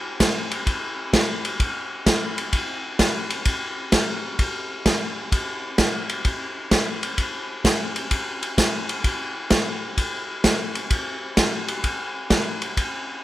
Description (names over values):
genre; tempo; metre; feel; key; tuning
country; 129 BPM; 4/4; swing 67% on 8ths; none; none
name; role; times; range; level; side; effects
vintage drum kit; drums; 0.2-12.9 s; hi-hat, kick drum, ride cymbal, snare drum; -21 LUFS; equal; none
room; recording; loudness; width
moderate echo chamber reverb, RT60 1.7 s; none; -21 LUFS; side -14 dB against mid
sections
0.0-13.2 A section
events
none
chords
none